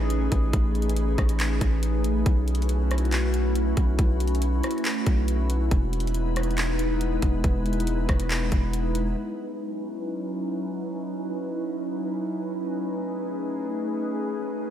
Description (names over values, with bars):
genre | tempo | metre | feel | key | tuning
hip hop, atmospheric cloud-rap | 139 BPM | 4/4 | half-time | C# minor | A4 = 440 Hz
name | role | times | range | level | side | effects
glassy FM pad | sustained chords | 0.0-14.7 s | F#3 to B4 | -28 LUFS | equal | ensemble chorus, built-in reverb, sidechain pumping, low-pass filter
long sustained 808-style bass | bass | 0.0-9.1 s | E1 to B1 | -25 LUFS | equal | none
trap drum kit | drums | 0.1-9.1 s | handclaps, hi-hat, kick drum, rim click | -26 LUFS | equal | none
room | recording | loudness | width
moderate lush hall reverb, RT60 2.1 s | dreamy mix soaked in reverb | -23 LUFS | side -10 dB against mid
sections
0.0-9.2 A section; 9.2-14.7 B section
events
filter sweep on ambient pad 9.2-14.7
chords
0.0 Amaj9#11; 2.3 B9sus4; 5.7 Emaj7; 9.2 C#m11; 12.6 Amaj9#11